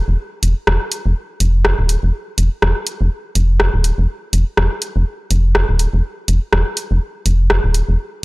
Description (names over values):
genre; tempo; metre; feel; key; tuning
minimal techno; 123 BPM; 4/4; swing 57% on 16ths; unclear; A4 = 440 Hz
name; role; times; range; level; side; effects
rubbery square bass; bass; 0.1-8.0 s; Eb1 to F1; -14 LUFS; equal; tube saturation
techno drum kit; drums; 0.4-7.9 s; hi-hat, rim click; -20 LUFS; equal; none
room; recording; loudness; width
little or no reverb; dry, gritty hardware recording, transformer saturation; -15 LUFS; side -22 dB against mid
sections
0.0-8.2 A section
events
none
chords
none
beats
0.18 0.67 | 1.16 1.65 2.13 2.62 | 3.11 3.60 4.09 4.57 | 5.06 5.55 6.04 6.53 | 7.01 7.50